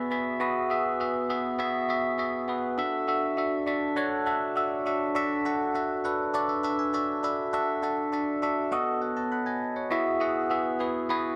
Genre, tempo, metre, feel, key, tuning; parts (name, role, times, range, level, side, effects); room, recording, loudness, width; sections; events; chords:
pop; 101 BPM; 4/4; straight; A4 = 441 Hz
bell-like tine electric piano; solo; 0.0-11.4 s; B3 to B5; -28 LUFS; equal; phaser
moderate lush hall reverb, RT60 2.4 s; -28 LUFS; mono
0.0-7.5 A section; 7.5-9.9 B section; 9.9-11.4 C section
tine electric piano fill 5.8-7.5
0.0 Eadd9; 2.8 Dadd9; 8.7 B7; 9.9 Eadd9